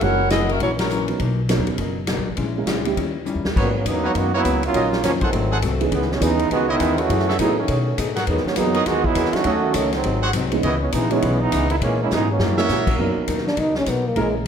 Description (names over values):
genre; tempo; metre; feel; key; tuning
jazz, big band swing; 204 BPM; 4/4; swing 61% on 8ths; B major, G# minor from 3.6 s; A4 = 441 Hz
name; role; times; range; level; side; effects
warm saxophone section; melody; 0.0-1.1 s; F#3 to F#5; -21 LUFS; left 2 dB; none
archtop guitar, miked and amplified; accompaniment; 0.0-14.4 s; F#2 to G#4; -27 LUFS; left 6 dB; none
warm upright piano; accompaniment; 0.0-14.3 s; E3 to A#4; -26 LUFS; right 6 dB; none
upright bass; bass; 0.0-14.5 s; F#1 to B2; -25 LUFS; left 1 dB; none
swinging big-band drum kit; drums; 0.0-14.2 s; crash cymbal, hi-hat, kick drum, ride cymbal, snare drum; -26 LUFS; left 1 dB; none
brilliant trombone section; second line; 3.6-12.8 s; A#2 to F#4; -21 LUFS; right 3 dB; none
clear trumpet section; stabs; 3.6-13.0 s; E4 to F#5; -27 LUFS; right 2 dB; none
clear trombone section; sustained chords; 13.0-14.3 s; F#3 to A#4; -29 LUFS; left 1 dB; none
growling trombone; melody; 13.5-14.5 s; C#3 to D#4; -21 LUFS; left 1 dB; none
room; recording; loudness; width
moderate recital hall reverb, RT60 1.5 s; none; -18 LUFS; side -8 dB against mid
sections
0.0-3.6 A section; 3.6-13.0 B section; 13.0-14.5 C section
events
band accent 0.8; drum fill 3.3, 12.1-12.7; trombone section solo 3.6-13.0; trombone solo 13.0-14.5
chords
0.0 F#7; 1.2 Bmaj7; 2.4 A#m7b5; 3.0 D#7b9; 3.6 G#m11; 4.7 D#m9; 5.3 G#7b9; 5.9 C#m9; 7.1 F#m9; 7.7 B13; 8.3 Emaj9#11; 9.5 D#m7b5; 10.0 G#7; 10.6 C#m9; 11.8 A#m7b5; 12.4 F#7; 13.0 Bmaj7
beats
| 0.01 0.31 0.60 0.90 | 1.20 1.49 1.79 2.08 | 2.38 2.67 2.97 3.27 | 3.56 3.86 4.15 4.45 | 4.74 5.04 5.33 5.62 | 5.92 6.21 6.51 6.80 | 7.10 7.39 7.69 7.98 | 8.28 8.57 8.86 9.16 | 9.45 9.75 10.04 10.33 | 10.63 10.92 11.22 11.51 | 11.80 12.10 12.39 12.69 | 12.98 13.28 13.57 13.87 | 14.16 14.46